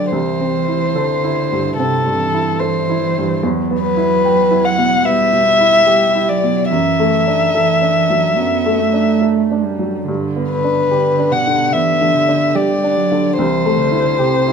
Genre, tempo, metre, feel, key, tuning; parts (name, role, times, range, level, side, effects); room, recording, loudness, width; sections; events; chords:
neoclassical piano and strings; 73 BPM; 4/4; rubato; A4 = 441 Hz
dark violin; melody; 0.0-14.5 s; A4 to F#5; -15 LUFS; left 3 dB
dark cello; second line; 0.0-14.5 s; B2 to B3; -20 LUFS; right 9 dB
bright upright piano; accompaniment; 0.0-14.5 s; C2 to G5; -19 LUFS; equal
light reverb; minimal, uncompressed stereo recording; -13 LUFS; side -6 dB against mid
0.0-14.5 A section
0.1 C6; 3.4 Emadd9; 6.7 Dadd9/F#; 10.1 G; 13.4 C6